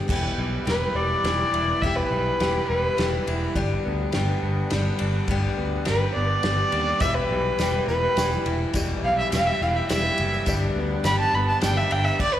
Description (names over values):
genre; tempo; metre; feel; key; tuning
folk rock and heartland rock; 104 BPM; 3/4; straight; unclear; A4 = 440 Hz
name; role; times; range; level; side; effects
picked steel-string acoustic guitar; accompaniment; 0.0-12.2 s; E2 to G4; -31 LUFS; left 5 dB; slapback echo
electric guitar through a small old amp; riff; 0.0-12.2 s; E2 to G4; -31 LUFS; right 2 dB; spring reverb, slapback echo
accordion; sustained chords; 0.1-12.2 s; G3 to B4; -37 LUFS; right 2 dB; light tremolo tuning
picked electric bass; bass; 0.1-12.1 s; E1 to Eb2; -26 LUFS; equal; none
unplugged drum kit; drums; 0.1-12.3 s; crash cymbal, kick drum, ride cymbal, snare drum; -30 LUFS; equal; none
dark fiddle; melody; 0.7-3.2, 5.9-12.4 s; B4 to B5; -24 LUFS; equal; slapback echo
warm baby grand piano; accompaniment; 7.0-12.2 s; G4 to G5; -38 LUFS; right 2 dB; none
tambourine; percussion; 7.0-12.1 s; none; -38 LUFS; right 3 dB; none
room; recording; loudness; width
small room ambience; live gig heard through the venue's PA, recital hall reverb; -21 LUFS; side -11 dB against mid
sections
0.1-12.4 A section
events
fiddle solo 0.1-12.4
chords
0.1 Em; 3.6 G; 7.0 Em; 10.5 G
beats
| 0.10 0.68 1.25 | 1.83 2.41 2.99 | 3.57 4.14 4.72 | 5.30 5.87 6.45 | 7.03 7.60 8.18 | 8.76 9.33 9.91 | 10.48 11.06 11.63 | 12.21